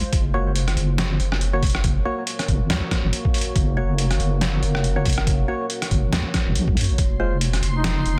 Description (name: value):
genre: deep dubstep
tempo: 140 BPM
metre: 4/4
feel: swing 57% on 16ths, half-time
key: unclear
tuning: A4 = 439 Hz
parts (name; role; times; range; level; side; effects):
- deep dark ambient pad; sustained chords; 0.0-8.2 s; Ab3 to Db5; -35 LUFS; equal; chorus, built-in reverb
- deep soft wobble bass; bass; 0.0-8.2 s; F1 to Gb2; -24 LUFS; equal; chorus
- trip hop sampler-style drum kit; drums; 0.0-8.2 s; hi-hat, rim click, snare drum; -28 LUFS; equal; none
- electronic kick drum; drums; 0.1-7.1 s; none; -24 LUFS; equal; none
- percussive organ stab; stabs; 0.3-7.4 s; Ab3 to Db5; -32 LUFS; equal; chorus, vintage 12-bit sampler grit, dub echo
- backwards swelling texture; texture; 7.1-8.2 s; C6; -37 LUFS; equal; built-in reverb
- warm duduk; melody; 7.8-8.2 s; Eb4; -29 LUFS; equal; none
room: little or no reverb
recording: dense, heavily limited modern master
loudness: -21 LUFS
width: mono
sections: 0.0-8.2 A section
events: none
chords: 0.1 Gb; 7.0 Fm